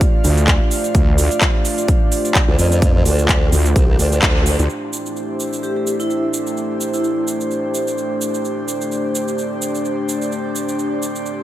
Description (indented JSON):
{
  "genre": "bass house",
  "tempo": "128 BPM",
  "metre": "4/4",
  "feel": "swing 56% on 16ths",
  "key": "A minor",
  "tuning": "A4 = 440 Hz",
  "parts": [
    { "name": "dark analog pad", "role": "sustained chords", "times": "0.0-11.4 s", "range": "A3 to D5", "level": "-24 LUFS", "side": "equal", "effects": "chorus, sidechain pumping" },
    { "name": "big-room dance drum kit", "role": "drums", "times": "0.0-11.4 s", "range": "cabasa, handclaps, hi-hat", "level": "-22 LUFS", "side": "right 1 dB", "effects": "studio reverb" },
    { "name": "electronic kick drum", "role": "drums", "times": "0.0-4.3 s", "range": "none", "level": "-15 LUFS", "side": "equal", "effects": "studio reverb" },
    { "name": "airy breathy pad", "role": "texture", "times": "0.0-11.4 s", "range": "A3 to F5", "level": "-24 LUFS", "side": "right 1 dB", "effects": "chorus, sidechain pumping" },
    { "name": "wobble bass", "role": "bass", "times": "0.2-4.7 s", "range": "D2", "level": "-15 LUFS", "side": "equal", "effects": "chorus, overdrive, sidechain pumping" },
    { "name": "formant-sweep wobble bass", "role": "bass", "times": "2.5-4.6 s", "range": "C2 to F2", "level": "-17 LUFS", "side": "equal", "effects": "chorus, tube saturation, sidechain pumping" },
    { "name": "vibraphone with medium hard mallets", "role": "melody", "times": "5.6-7.3 s", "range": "E4 to G4", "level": "-24 LUFS", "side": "equal", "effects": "tape echo" }
  ],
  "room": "light reverb",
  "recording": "none",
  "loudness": "-15 LUFS",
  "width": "side -13 dB against mid",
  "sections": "0.0-4.7 A section; 4.7-11.4 B section",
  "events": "drop 0.0-4.7; band accent 4.2",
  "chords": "0.0 Dm; 4.7 Am",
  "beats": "0.01 0.48 | 0.95 1.42 1.88 2.35 | 2.82 3.29 3.76 4.23 | 4.70 5.17 5.63 6.10 | 6.57 7.04 7.51 7.98 | 8.45 8.91 9.38 9.85 | 10.32 10.79 11.26"
}